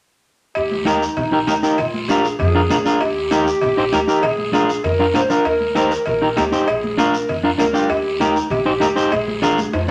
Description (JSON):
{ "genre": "latin, cumbia", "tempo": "196 BPM", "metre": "4/4", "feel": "straight", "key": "Eb major", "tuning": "A4 = 440 Hz", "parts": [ { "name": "mellow clarinet", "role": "second line", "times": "0.6-9.9 s", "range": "Eb4 to C5", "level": "-23 LUFS", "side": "equal", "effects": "none" }, { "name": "upright bass", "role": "bass", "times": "0.6-9.9 s", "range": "Bb1 to F2", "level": "-30 LUFS", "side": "equal", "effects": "none" }, { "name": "cowbell and timbales", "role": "percussion", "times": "0.6-9.9 s", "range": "none", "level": "-28 LUFS", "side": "equal", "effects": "none" }, { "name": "guiro", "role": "percussion", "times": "0.6-9.9 s", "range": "none", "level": "-34 LUFS", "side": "equal", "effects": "none" }, { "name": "congas", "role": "percussion", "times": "0.7-9.9 s", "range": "none", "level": "-31 LUFS", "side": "equal", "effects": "none" }, { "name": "electric guitar at the edge of break-up", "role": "accompaniment", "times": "0.9-9.9 s", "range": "D4 to C5", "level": "-20 LUFS", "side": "equal", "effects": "none" } ], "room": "moderate studio reverb, RT60 0.7 s", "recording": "none", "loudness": "-18 LUFS", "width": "mono", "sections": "0.6-9.9 A section", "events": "drum fill 9.1-9.9", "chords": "0.6 Eb; 1.8 Bb7; 3.0 Eb; 4.2 Bb7; 5.5 Eb; 6.7 Bb7; 7.9 Eb; 9.1 Bb7" }